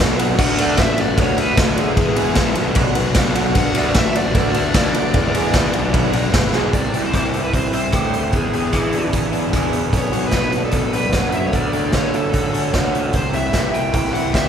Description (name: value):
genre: indie rock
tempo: 150 BPM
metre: 4/4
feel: straight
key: D lydian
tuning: A4 = 440 Hz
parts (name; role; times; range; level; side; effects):
- mellow tonewheel organ; sustained chords; 0.0-6.7 s; F#4 to B5; -31 LUFS; right 2 dB; none
- overdriven electric guitar; riff; 0.0-14.5 s; B2 to G#4; -25 LUFS; left 6 dB; none
- raw garage guitar; riff; 0.0-14.5 s; E2 to G#4; -23 LUFS; right 3 dB; overdrive
- fuzz picked electric bass; bass; 0.0-14.5 s; G#1 to E3; -23 LUFS; equal; overdrive
- raw garage drum kit; drums; 0.0-14.4 s; crash cymbal, hi-hat, kick drum, ride cymbal, rim click, snare drum; -19 LUFS; equal; none
- dark smooth lead guitar; melody; 0.4-14.5 s; G#4 to G5; -25 LUFS; left 1 dB; overdrive
room: wet cathedral reverb, RT60 4.5 s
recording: recorded in a church or concert hall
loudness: -15 LUFS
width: side -8 dB against mid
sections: 0.0-6.7 A section; 6.7-14.5 B section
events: drum fill 6.5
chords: 0.4 D6; 2.0 E; 2.6 Bm; 3.6 D6; 5.1 E; 5.7 Bm; 6.3 E; 6.7 C6; 8.3 E7; 9.9 Bm7; 11.5 Dmaj7; 13.1 C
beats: | 0.39 0.78 1.18 1.58 | 1.97 2.37 2.77 3.16 | 3.56 3.96 4.35 4.75 | 5.15 5.54 5.94 6.34 | 6.74 7.14 7.54 7.94 | 8.34 8.74 9.14 9.54 | 9.94 10.34 10.74 11.14 | 11.54 11.94 12.34 12.74 | 13.14 13.54 13.94 14.34